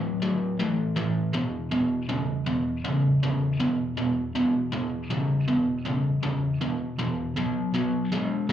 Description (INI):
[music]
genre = rock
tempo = 80 BPM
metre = 4/4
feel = straight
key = E major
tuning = A4 = 440 Hz
[part]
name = biting overdriven guitar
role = solo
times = 0.0-8.5 s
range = E2 to G#3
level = -24 LUFS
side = equal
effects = slapback echo
[sound]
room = wet club ambience, RT60 0.5 s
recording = live gig heard through the venue's PA, club reverb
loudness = -24 LUFS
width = side -10 dB against mid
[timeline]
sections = 0.0-8.5 A section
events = none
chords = 0.0 A5; 1.4 E5; 7.4 B5